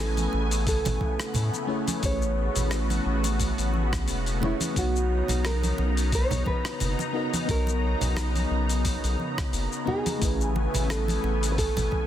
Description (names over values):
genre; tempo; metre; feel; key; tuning
sunset chillout; 88 BPM; 4/4; swing 55% on 16ths; unclear; A4 = 438 Hz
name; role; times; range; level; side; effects
nylon-string guitar; melody; 0.0-12.1 s; E4 to C#5; -33 LUFS; right 1 dB; tape echo
mellow FM electric piano; accompaniment; 0.0-12.1 s; A3 to G#5; -32 LUFS; left 1 dB; chorus, auto-pan, digital delay
lush unison pad; sustained chords; 0.0-12.1 s; C#3 to A#5; -32 LUFS; equal; chorus, phaser, vintage 12-bit sampler grit
round analog bass; bass; 0.0-11.9 s; E1 to A2; -27 LUFS; equal; none
dusty soul sampler-style drum kit; drums; 0.2-11.9 s; hi-hat, rim click, shaker; -34 LUFS; left 3 dB; small room ambience, soft clipping on snare
congas; percussion; 0.2-12.1 s; none; -34 LUFS; right 3 dB; none
electronic kick drum; drums; 0.7-12.1 s; none; -29 LUFS; equal; small room ambience
room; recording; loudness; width
light reverb, digital ambience; dense, heavily limited modern master; -24 LUFS; side -11 dB against mid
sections
0.0-12.1 A section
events
none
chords
0.0 Amaj9; 4.8 Bmaj9; 10.2 Amaj9